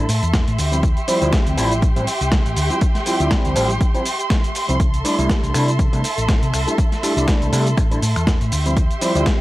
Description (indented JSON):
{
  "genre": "filtered disco house",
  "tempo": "121 BPM",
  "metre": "4/4",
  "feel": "swing 56% on 16ths",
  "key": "unclear",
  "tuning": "A4 = 441 Hz",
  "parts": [
    { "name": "overdriven tine electric piano", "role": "accompaniment", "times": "0.0-9.4 s", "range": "F3 to E4", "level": "-21 LUFS", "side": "equal", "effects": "phaser, vintage 12-bit sampler grit, sidechain pumping, low-pass filter" },
    { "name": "dark studio violin section", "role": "sustained chords", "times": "0.0-9.4 s", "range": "G4 to C6", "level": "-25 LUFS", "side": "equal", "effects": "sidechain pumping, low-pass filter" },
    { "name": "hollow-body short-scale fingered electric bass", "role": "bass", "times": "0.0-9.2 s", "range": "A1 to C3", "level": "-21 LUFS", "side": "equal", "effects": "tube saturation, sidechain pumping, low-pass filter" },
    { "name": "dusty soul sampler-style drum kit", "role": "drums", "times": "0.1-9.4 s", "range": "finger snaps, hi-hat, shaker, snare drum", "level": "-25 LUFS", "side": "equal", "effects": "overdrive" },
    { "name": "electronic kick drum", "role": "drums", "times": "0.3-9.4 s", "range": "none", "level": "-18 LUFS", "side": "equal", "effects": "overdrive" }
  ],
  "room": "digital ambience",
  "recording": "dry, gritty hardware recording",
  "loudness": "-16 LUFS",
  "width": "side -17 dB against mid",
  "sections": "0.0-9.4 A section",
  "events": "none",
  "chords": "0.0 C6; 0.6 Dm11; 4.8 C6; 8.5 Dm11",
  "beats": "0.34 | 0.83 1.33 1.82 2.32 | 2.81 3.31 3.81 4.30 | 4.80 5.29 5.79 6.29 | 6.78 7.28 7.77 8.27 | 8.77 9.26"
}